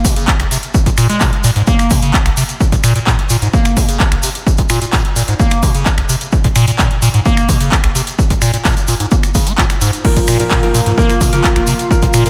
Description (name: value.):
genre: acid house.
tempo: 129 BPM.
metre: 4/4.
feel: straight.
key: Bb minor.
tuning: A4 = 440 Hz.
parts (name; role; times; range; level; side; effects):
liquid acid bass; riff; 0.0-12.3 s; Bb1 to Bb3; -18 LUFS; equal; phaser, overdrive, sidechain pumping, tape echo.
booming analog drum machine; drums; 0.0-12.3 s; crash cymbal, finger snaps, handclaps, hi-hat; -22 LUFS; equal; none.
electronic kick drum; drums; 0.0-12.1 s; none; -16 LUFS; equal; overdrive.
egg shaker; percussion; 0.1-12.3 s; none; -26 LUFS; equal; none.
lush unison pad; sustained chords; 10.0-12.3 s; F4; -22 LUFS; equal; chorus, sidechain pumping.
clear grand piano; stabs; 10.0-12.3 s; F3 to Bb4; -20 LUFS; equal; tape echo.
room: moderate lush hall reverb, RT60 1.8 s.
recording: dreamy mix soaked in reverb.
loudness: -13 LUFS.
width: mono.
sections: 0.0-12.3 A section.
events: none.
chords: 0.0 Bb5.